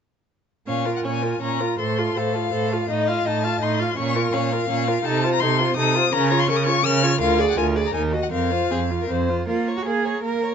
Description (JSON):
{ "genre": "quick classical-period movement for string quartet", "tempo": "165 BPM", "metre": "3/4", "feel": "rubato", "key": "Bb minor", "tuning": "A4 = 439 Hz", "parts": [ { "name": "warm violin", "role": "melody", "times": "0.7-10.5 s", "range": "Eb5 to F6", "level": "-25 LUFS", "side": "left 12 dB", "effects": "none" }, { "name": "dark violin", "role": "second line", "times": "0.7-10.5 s", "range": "Ab4 to F5", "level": "-26 LUFS", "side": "left 4 dB", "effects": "none" }, { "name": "rich viola", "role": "accompaniment", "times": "0.7-10.5 s", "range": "Bb3 to A4", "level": "-25 LUFS", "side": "right 3 dB", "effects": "none" }, { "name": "rich cello", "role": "bass", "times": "0.7-10.5 s", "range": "D2 to Bb4", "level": "-24 LUFS", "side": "right 5 dB", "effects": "none" } ], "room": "moderate large studio reverb, RT60 0.9 s", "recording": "nothing above 7.9 kHz", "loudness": "-19 LUFS", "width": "side -7 dB against mid", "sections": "0.7-9.5 A section; 9.5-10.5 A section", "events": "none", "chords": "0.7 Bbm; 1.8 F/A; 2.9 F7/A; 4.0 Bbm; 5.1 F7/C; 6.1 Bbm/Db; 7.2 Bb7/D; 7.9 Ebm; 8.3 Fsus4; 9.5 Bbm" }